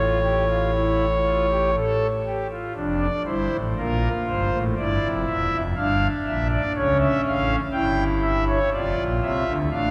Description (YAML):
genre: classical, baroque-style 3-part fugue for pipe organ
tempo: 60 BPM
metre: 4/4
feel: straight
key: D minor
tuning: A4 = 440 Hz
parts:
  - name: pipe organ, foundations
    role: solo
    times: 0.0-9.9 s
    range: E1 to G5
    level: -23 LUFS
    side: equal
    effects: none
room: wet cathedral reverb, RT60 4.6 s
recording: dark, warm production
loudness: -23 LUFS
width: mono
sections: 0.0-2.8 A section; 2.8-9.9 B section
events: none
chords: 0.0 A; 2.8 Dm/F; 4.8 Em7b5; 6.8 A7; 8.7 Dm/F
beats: 0.73 1.74 | 2.75 3.77 4.77 5.76 | 6.76 7.74 8.73 9.72